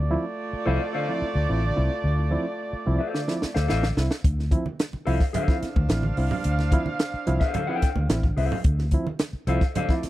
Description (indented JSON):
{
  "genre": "funk",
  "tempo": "109 BPM",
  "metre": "4/4",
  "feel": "straight",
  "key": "D minor",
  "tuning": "A4 = 440 Hz",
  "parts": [
    { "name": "warm horn section", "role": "second line", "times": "0.0-10.1 s", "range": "A3 to F5", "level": "-31 LUFS", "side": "right 2 dB", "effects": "slapback echo" },
    { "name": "barky reed electric piano", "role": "stabs", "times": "0.0-10.1 s", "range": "D3 to E4", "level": "-29 LUFS", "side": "right 2 dB", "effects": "overdrive, fast tremolo" },
    { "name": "vintage muted fingered electric bass", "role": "bass", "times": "0.0-10.1 s", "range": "A1 to D2", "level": "-24 LUFS", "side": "equal", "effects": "none" },
    { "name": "mellow electric guitar", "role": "accompaniment", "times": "0.7-9.9 s", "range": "A4 to G5", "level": "-30 LUFS", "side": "left 6 dB", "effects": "spring reverb" },
    { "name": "compact cocktail drum kit", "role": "drums", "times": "3.1-10.1 s", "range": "hi-hat, kick drum, snare drum", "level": "-23 LUFS", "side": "equal", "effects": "none" },
    { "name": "congas", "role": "percussion", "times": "4.7-9.9 s", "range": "none", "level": "-32 LUFS", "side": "right 4 dB", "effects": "none" }
  ],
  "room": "studio ambience",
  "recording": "dry, close 1970s-style studio recording",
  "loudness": "-22 LUFS",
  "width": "side -15 dB against mid",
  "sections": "0.0-10.1 A section",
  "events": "drum fill 3.1-4.2",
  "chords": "0.0 Dm7"
}